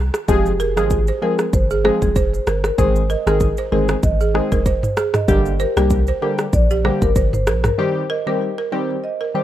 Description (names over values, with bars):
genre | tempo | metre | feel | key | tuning
afrobeats | 96 BPM | 4/4 | swing 55% on 16ths | unclear | A4 = 440 Hz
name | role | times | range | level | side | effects
punchy sub bass | bass | 0.0-7.7 s | F1 to C2 | -20 LUFS | equal | none
afro-pop drum kit | drums | 0.1-7.8 s | kick drum, rim click, shaker, toms | -20 LUFS | equal | none
marimba with medium mallets | melody | 0.3-9.4 s | G4 to Eb5 | -23 LUFS | equal | none
warm analog keys | accompaniment | 0.3-9.4 s | D3 to Ab4 | -22 LUFS | left 2 dB | chorus
balafon | riff | 0.6-9.3 s | G4 to C5 | -24 LUFS | right 6 dB | none
room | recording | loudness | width
little or no reverb | rough home demo mix | -15 LUFS | side -12 dB against mid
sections
0.3-9.4 A section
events
break 0.0, 7.8-9.4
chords
0.3 Fm; 2.8 Ab; 5.3 Gm; 7.8 Cm